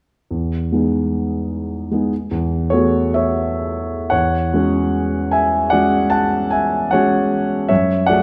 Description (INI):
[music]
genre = classical, impressionist solo piano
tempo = 38-52 BPM (dotted quarters)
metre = 9/8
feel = rubato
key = E major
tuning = A4 = 440 Hz
[part]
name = warm concert grand piano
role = solo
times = 0.3-8.2 s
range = E2 to A5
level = -18 LUFS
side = equal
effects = none
[sound]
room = wet concert hall reverb, RT60 2.1 s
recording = none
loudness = -18 LUFS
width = mono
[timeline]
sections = 0.3-4.1 A section; 4.1-8.2 B section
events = none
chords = 0.3 Emaj7; 2.1 F#m11/E; 4.1 E69; 7.7 F#m9